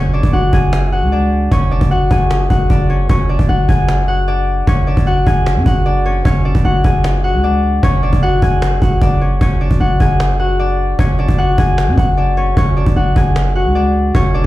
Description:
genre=hip hop, trap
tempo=152 BPM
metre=4/4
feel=half-time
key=unclear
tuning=A4 = 440 Hz
part: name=concert harp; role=melody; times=0.0-14.5 s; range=C#4 to G#5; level=-17 LUFS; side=left 2 dB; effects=tape echo
part: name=growling 808-style bass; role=bass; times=0.0-14.5 s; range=E#1 to F#2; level=-14 LUFS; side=equal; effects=none
part: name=cajon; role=drums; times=0.1-14.5 s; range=none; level=-19 LUFS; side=equal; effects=none
room=small room ambience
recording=played on a big sound system in a bare room, large studio reverb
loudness=-11 LUFS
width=side -16 dB against mid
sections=0.0-14.5 A section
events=none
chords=0.0 F#sus2; 3.1 Dmaj7#11/F#; 6.3 F#sus2; 9.4 Dmaj7#11/F#; 12.6 F#sus2

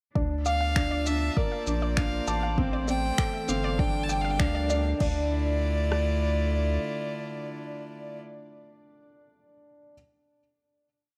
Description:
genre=piano and strings electronica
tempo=99 BPM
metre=4/4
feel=straight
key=D minor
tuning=A4 = 440 Hz
part: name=warm string quartet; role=sustained chords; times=0.2-8.2 s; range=D3 to E6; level=-39 LUFS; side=equal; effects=sidechain pumping
part: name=unison pluck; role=arpeggios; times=0.2-5.3 s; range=D5 to D6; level=-41 LUFS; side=equal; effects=sidechain pumping, tape echo
part: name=dark baby grand piano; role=riff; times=0.2-9.9 s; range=C4 to A5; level=-34 LUFS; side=equal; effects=tape echo
part: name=round analog bass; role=bass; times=0.2-6.8 s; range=G1 to D2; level=-31 LUFS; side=equal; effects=sidechain pumping
part: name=deep house drum kit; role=drums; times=0.2-6.1 s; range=kick drum, rim click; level=-30 LUFS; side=equal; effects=none
part: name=rich violin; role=melody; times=0.5-8.2 s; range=D5 to A5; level=-36 LUFS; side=equal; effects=tape echo
part: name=deep house drum kit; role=drums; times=0.5-5.1 s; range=crash cymbal, finger snaps, shaker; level=-36 LUFS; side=equal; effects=high-pass filter on perc, high-pass filter on snare, high-pass filter on cymbals, high-pass filter on room
room=light reverb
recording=none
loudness=-27 LUFS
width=mono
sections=0.2-5.0 build; 5.0-7.4 final chord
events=build-up 0.2-5.0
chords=0.2 Dmadd9; 1.4 Bbmaj7; 2.6 Am7; 3.8 Gm7; 5.0 Dmadd9

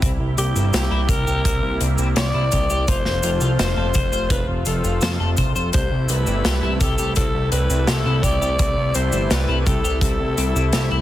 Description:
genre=synthwave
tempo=84 BPM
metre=4/4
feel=straight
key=C major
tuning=A4 = 440 Hz
part: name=lush unison pad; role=sustained chords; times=0.0-11.0 s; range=C3 to F4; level=-27 LUFS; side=left 1 dB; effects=chorus, sidechain pumping
part: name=electric guitar at the edge of break-up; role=riff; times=0.0-11.0 s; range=C4 to C5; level=-30 LUFS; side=left 3 dB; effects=analog chorus, tape echo
part: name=fat analog bass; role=bass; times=0.0-11.0 s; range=F1 to F2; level=-21 LUFS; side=equal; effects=tube saturation
part: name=big rock drum kit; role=drums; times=0.0-10.9 s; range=cabasa, hi-hat, snare drum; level=-25 LUFS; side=left 1 dB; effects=none
part: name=kick drum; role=drums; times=0.0-10.2 s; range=none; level=-22 LUFS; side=equal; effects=none
part: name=growling alto saxophone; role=melody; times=0.4-11.0 s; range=G4 to D5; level=-25 LUFS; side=left 1 dB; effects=tape echo
room=light reverb, small room ambience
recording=dense, heavily limited modern master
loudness=-17 LUFS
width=side -13 dB against mid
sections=0.0-11.0 A section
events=none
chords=0.0 C7; 2.9 F; 5.7 C6

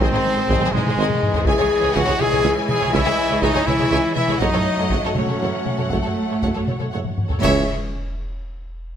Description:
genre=cinematic, epic orchestral film score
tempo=81 BPM (dotted quarters)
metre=6/8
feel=straight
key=C# harmonic minor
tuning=A4 = 440 Hz
part: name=warm symphonic violin section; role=melody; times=0.0-7.7 s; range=G#4 to G#5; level=-30 LUFS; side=left 2 dB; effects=none
part: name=rich chamber violin section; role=second line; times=0.0-7.7 s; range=G#4 to G#5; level=-28 LUFS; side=left 2 dB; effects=none
part: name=rich symphonic viola section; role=accompaniment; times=0.0-7.7 s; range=G#4 to C#5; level=-29 LUFS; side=right 1 dB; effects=none
part: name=clear trombone section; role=sustained chords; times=0.0-7.6 s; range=D#3 to D#4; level=-31 LUFS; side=right 3 dB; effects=none
part: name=mellow French horn section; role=sustained chords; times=0.0-7.6 s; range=G#3 to G#4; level=-24 LUFS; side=left 6 dB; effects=none
part: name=warm symphonic string section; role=sustained chords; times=0.0-7.7 s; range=G#3 to B#5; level=-29 LUFS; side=left 2 dB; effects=none
part: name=warm trumpet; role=stabs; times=0.0-7.6 s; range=G#3 to C#5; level=-25 LUFS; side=right 2 dB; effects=none
part: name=rich symphonic double bass section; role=bass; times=0.0-7.7 s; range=G#1 to F#2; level=-28 LUFS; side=right 3 dB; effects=none
part: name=warm symphonic cello section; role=bass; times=0.0-7.7 s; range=C#2 to A3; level=-27 LUFS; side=right 3 dB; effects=none
part: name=warm tuba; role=bass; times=0.0-7.6 s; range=F#1 to C#2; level=-26 LUFS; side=right 5 dB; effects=none
part: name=taiko ensemble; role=drums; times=0.0-7.5 s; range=none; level=-24 LUFS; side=equal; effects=none
part: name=clash cymbals and concert bass drum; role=percussion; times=7.4-8.4 s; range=none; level=-28 LUFS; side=equal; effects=none
room=moderate recital hall reverb, RT60 1.5 s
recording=close, detailed microphones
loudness=-17 LUFS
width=side -9 dB against mid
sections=0.0-7.4 A section; 7.4-8.9 B section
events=drum fill 1.1-1.5, 7.0-7.4; band accent 7.4-7.9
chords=0.0 G#; 1.5 C#m; 4.4 F#m; 7.4 C#m

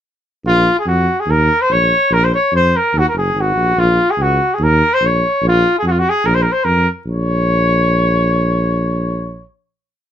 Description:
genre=balkan folk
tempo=146 BPM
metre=2/4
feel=straight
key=Bb minor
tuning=A4 = 440 Hz
part: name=warm trumpet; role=melody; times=0.5-9.5 s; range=F4 to Db5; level=-14 LUFS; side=equal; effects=none
part: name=mellow tuba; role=bass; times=0.5-9.5 s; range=Gb1 to F2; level=-16 LUFS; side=equal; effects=none
room=light reverb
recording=none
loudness=-12 LUFS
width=side -10 dB against mid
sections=0.4-7.1 A section; 7.1-8.7 final chord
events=none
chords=0.4 Bb5; 1.3 Eb5; 2.1 Bb5; 2.9 Ebm; 3.8 Bbm; 4.6 Eb5; 5.4 Bb5; 7.1 Bbm

